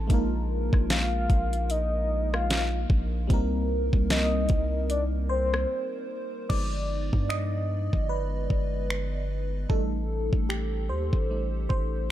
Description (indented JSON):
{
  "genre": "contemporary R&B",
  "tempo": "75 BPM",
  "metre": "4/4",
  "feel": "swing 58% on 16ths",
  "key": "unclear",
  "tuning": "A4 = 440 Hz",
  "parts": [
    { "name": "FM electric piano with soft pad layer", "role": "accompaniment", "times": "0.0-12.1 s", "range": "F3 to Eb5", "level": "-31 LUFS", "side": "equal", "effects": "chorus, phaser" },
    { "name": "long sustained 808-style bass", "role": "bass", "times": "0.0-12.1 s", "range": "G1 to G2", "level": "-28 LUFS", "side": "equal", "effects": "none" },
    { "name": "smooth R&B drum kit", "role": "drums", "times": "0.1-11.9 s", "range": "crash cymbal, finger snaps, hi-hat, kick drum, rim click, snare drum", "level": "-26 LUFS", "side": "equal", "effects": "none" },
    { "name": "soft octave-layered synth lead", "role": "melody", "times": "0.9-6.1 s", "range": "C5 to F5", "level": "-31 LUFS", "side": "left 1 dB", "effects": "chorus, tremolo, ping-pong delay" }
  ],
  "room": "little or no reverb",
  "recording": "dark, warm production",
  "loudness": "-24 LUFS",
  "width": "side -12 dB against mid",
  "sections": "0.0-6.5 A section; 6.5-12.1 B section",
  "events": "break 5.7-6.5; FM electric piano solo 6.5-12.1",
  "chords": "0.1 Bb7sus4; 3.3 Cm7; 6.5 G7b9b13; 9.7 Am7b5"
}